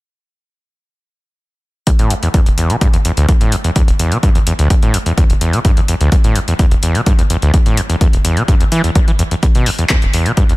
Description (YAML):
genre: acid house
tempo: 127 BPM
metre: 4/4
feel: straight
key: E minor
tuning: A4 = 441 Hz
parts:
  - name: overdriven acid bass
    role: riff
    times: 1.9-10.5 s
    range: E1 to E3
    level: -15 LUFS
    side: equal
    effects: distortion, sidechain pumping, ping-pong delay
  - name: electronic kick drum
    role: drums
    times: 1.9-10.5 s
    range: none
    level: -12 LUFS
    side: equal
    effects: overdrive
  - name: punchy analog drum machine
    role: drums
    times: 1.9-10.6 s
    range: handclaps, hi-hat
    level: -21 LUFS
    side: left 2 dB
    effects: overdrive
room: little or no reverb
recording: none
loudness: -11 LUFS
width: side -21 dB against mid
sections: 1.9-10.6 A section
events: none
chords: none